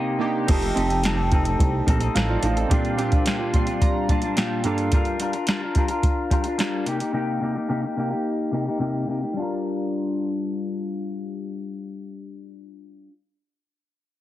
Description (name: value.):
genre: indie pop, bedroom pop.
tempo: 108 BPM.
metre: 4/4.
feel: straight.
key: G minor.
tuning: A4 = 440 Hz.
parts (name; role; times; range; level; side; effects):
chorused retro synth keys; accompaniment; 0.0-4.9 s; G2 to C6; -26 LUFS; right 4 dB; low-pass filter.
clean electric guitar; accompaniment; 0.0-13.1 s; Bb2 to Bb4; -25 LUFS; left 2 dB; lush chorus, vibrato effect, low-pass filter.
fat analog bass; bass; 0.5-2.6 s; F1 to C2; -24 LUFS; equal; none.
soft vintage rhythm box; drums; 0.5-7.1 s; crash cymbal, hi-hat, kick drum, snare drum; -22 LUFS; equal; none.
room: moderate spring reverb, RT60 1.5 s.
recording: heavily compressed radio sound, multiband compression.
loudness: -21 LUFS.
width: side -14 dB against mid.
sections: 0.5-9.4 A section; 9.4-11.6 B section.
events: break 0.0-0.5; filter sweep 0.5-9.4; synth keys fill 3.3-4.9.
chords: 0.5 F7; 2.7 Bb6; 4.6 Gm7; 6.9 Cm7; 9.4 Gm7.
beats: | 0.47 1.03 1.58 2.14 | 2.70 3.25 3.81 4.36 | 4.92 5.47 6.03 6.59 | 7.14 7.70 8.26 8.81 | 9.37 9.93 10.48 11.04.